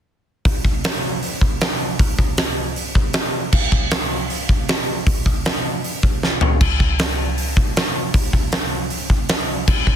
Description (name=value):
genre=rock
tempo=156 BPM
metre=4/4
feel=straight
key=none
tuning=none
part: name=huge arena drum kit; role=drums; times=0.5-10.0 s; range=crash cymbal, hi-hat, kick drum, snare drum, toms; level=-17 LUFS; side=equal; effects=none
room=little or no reverb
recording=dense, heavily limited modern master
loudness=-17 LUFS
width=side -9 dB against mid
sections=0.4-10.0 A section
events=drum fill 6.2-6.6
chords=none